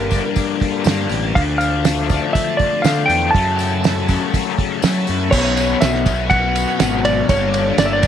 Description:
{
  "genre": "psychedelic rock",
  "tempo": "121 BPM",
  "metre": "4/4",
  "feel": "straight",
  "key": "B minor",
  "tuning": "A4 = 440 Hz",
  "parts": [
    { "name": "clean lap steel guitar", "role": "melody", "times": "0.0-8.1 s", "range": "Bb4 to A5", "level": "-20 LUFS", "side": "right 1 dB", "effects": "tape echo" },
    { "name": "bright tonewheel organ", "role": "sustained chords", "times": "0.0-8.1 s", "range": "F3 to A5", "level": "-29 LUFS", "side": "right 12 dB", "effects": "slow rotary speaker, overdrive" },
    { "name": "cranked stack guitar", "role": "riff", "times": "0.0-8.1 s", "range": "F#2 to D4", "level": "-21 LUFS", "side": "left 13 dB", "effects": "overdrive, rotary speaker" },
    { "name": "fuzz fingered electric bass", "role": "bass", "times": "0.0-8.1 s", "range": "G1 to F#3", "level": "-21 LUFS", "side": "equal", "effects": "overdrive" },
    { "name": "cloth-damped thuddy drum kit", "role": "drums", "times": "0.1-8.1 s", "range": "crash cymbal, hi-hat, kick drum, ride cymbal, snare drum", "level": "-20 LUFS", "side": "right 4 dB", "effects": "none" },
    { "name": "tambourine", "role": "percussion", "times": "0.1-8.1 s", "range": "none", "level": "-34 LUFS", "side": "left 12 dB", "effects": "none" }
  ],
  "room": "light reverb, small room ambience",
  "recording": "1960s-style stereo with parts hard left and right",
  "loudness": "-15 LUFS",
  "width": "side -9 dB against mid",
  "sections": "0.0-5.3 A section; 5.3-8.1 B section",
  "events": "none",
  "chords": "0.0 Gmadd9; 1.4 Dm; 3.3 F#m7; 5.3 Bsus2; 7.3 Gmadd9"
}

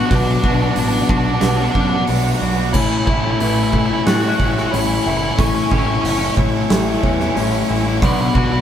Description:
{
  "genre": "post-rock",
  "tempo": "91 BPM",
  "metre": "4/4",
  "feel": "straight",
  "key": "A major",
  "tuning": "A4 = 437 Hz",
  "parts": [
    { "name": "nasal lead guitar with a parked wah", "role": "melody", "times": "0.0-8.6 s", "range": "C#4 to F#4", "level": "-22 LUFS", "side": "left 1 dB", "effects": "overdrive" },
    { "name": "clear studio string section", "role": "sustained chords", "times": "0.0-8.6 s", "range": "D4 to C#6", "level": "-33 LUFS", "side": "right 1 dB", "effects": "none" },
    { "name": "felt-muted upright piano", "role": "arpeggios", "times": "0.0-8.6 s", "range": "A4 to F#5", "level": "-30 LUFS", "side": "right 4 dB", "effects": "none" },
    { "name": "twangy electric guitar", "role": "arpeggios", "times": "0.0-8.6 s", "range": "A2 to F#4", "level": "-29 LUFS", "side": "left 2 dB", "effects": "none" },
    { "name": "crunchy overdriven guitar", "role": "riff", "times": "0.0-8.6 s", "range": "A2 to F#4", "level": "-20 LUFS", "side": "left 6 dB", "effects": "none" },
    { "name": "tight distorted guitar", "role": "riff", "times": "0.0-8.6 s", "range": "A2 to F#4", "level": "-23 LUFS", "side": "right 6 dB", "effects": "distortion" },
    { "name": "growling picked electric bass", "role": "bass", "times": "0.1-8.6 s", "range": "F#1 to A2", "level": "-21 LUFS", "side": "right 1 dB", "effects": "overdrive" },
    { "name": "big rock drum kit", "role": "drums", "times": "0.1-8.5 s", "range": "crash cymbal, hi-hat, kick drum, snare drum", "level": "-20 LUFS", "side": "right 1 dB", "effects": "none" }
  ],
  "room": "wet studio reverb, RT60 0.5 s",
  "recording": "band playing live in one room",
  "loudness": "-14 LUFS",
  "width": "side -9 dB against mid",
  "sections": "0.0-8.6 A section",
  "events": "none",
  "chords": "0.0 Bm; 2.7 A; 8.0 Bm"
}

